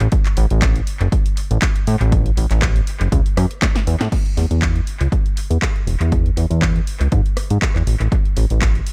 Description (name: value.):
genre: nu-disco, nu disco.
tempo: 120 BPM.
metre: 4/4.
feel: swing 54% on 16ths.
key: unclear.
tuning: A4 = 438 Hz.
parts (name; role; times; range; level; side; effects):
fat analog bass; bass; 0.0-8.8 s; E1 to A2; -19 LUFS; equal; none.
house drum kit; drums; 0.0-8.9 s; crash cymbal, handclaps, hi-hat, rim click, snare drum; -28 LUFS; equal; small room reverb, analog delay.
electronic kick drum; drums; 0.1-8.7 s; none; -21 LUFS; equal; small room reverb.
room: digital ambience.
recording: echo-heavy mix.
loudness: -18 LUFS.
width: mono.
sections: 0.0-4.1 A section; 4.1-8.9 B section.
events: drop 0.0-4.1; drum fill 3.6-4.1.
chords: none.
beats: | 0.12 0.62 1.12 1.62 | 2.12 2.62 3.12 3.62 | 4.12 4.62 5.12 5.62 | 6.12 6.62 7.12 7.62 | 8.12 8.62.